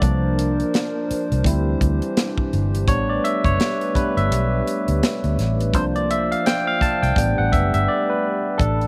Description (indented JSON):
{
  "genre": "R&B, neo-soul",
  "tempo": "84 BPM",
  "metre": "4/4",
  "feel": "swing 59% on 16ths",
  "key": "unclear",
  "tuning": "A4 = 440 Hz",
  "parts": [
    { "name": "barky tine electric piano", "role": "accompaniment", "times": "0.0-8.9 s", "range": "F3 to A5", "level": "-24 LUFS", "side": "equal", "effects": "overdrive" },
    { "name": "hollow soft pad", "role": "sustained chords", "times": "0.0-8.9 s", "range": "E3 to B5", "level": "-31 LUFS", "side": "equal", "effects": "chorus" },
    { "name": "vintage muted fingered electric bass", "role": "bass", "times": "0.0-8.9 s", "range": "F#1 to D2", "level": "-24 LUFS", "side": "equal", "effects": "none" },
    { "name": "tight funk drum kit", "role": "drums", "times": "0.0-8.9 s", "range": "hi-hat, kick drum, snare drum", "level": "-25 LUFS", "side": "equal", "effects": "none" }
  ],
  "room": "light reverb, small room reverb",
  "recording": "none",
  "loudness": "-20 LUFS",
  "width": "mono",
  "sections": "0.0-8.6 A section",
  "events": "tine electric piano solo 0.0-8.6; break 7.9-8.6",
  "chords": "0.0 C9sus4; 1.4 D9sus4; 2.9 A9sus4; 5.7 C9sus4; 7.2 A9sus4",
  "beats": "| 0.02 0.73 1.45 2.16 | 2.88 3.59 4.31 5.02 | 5.74 6.45 7.16 7.88 | 8.59"
}